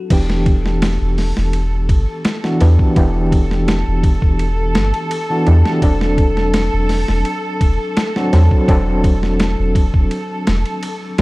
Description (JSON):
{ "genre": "trip hop", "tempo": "84 BPM", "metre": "4/4", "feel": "straight", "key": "E minor", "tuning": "A4 = 440 Hz", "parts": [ { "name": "overdriven reed electric piano", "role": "accompaniment", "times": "0.0-11.2 s", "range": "E3 to A4", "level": "-20 LUFS", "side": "equal", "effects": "tremolo, tape echo" }, { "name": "muted studio violin section", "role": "sustained chords", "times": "0.1-11.2 s", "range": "A4", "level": "-24 LUFS", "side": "equal", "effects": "none" }, { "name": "soft dub sub bass", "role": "bass", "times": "0.1-11.2 s", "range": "E1 to E2", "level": "-16 LUFS", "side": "equal", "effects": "none" }, { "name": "boom bap sampler-style drum kit", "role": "drums", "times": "0.1-11.2 s", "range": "crash cymbal, hi-hat, kick drum, ride cymbal, snare drum", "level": "-17 LUFS", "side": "equal", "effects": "small room ambience" } ], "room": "digital ambience", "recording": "dark, warm production, vinyl crackle", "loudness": "-13 LUFS", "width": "side -21 dB against mid", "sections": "0.1-11.2 A section", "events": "none", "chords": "0.1 Em7; 5.8 D7/E" }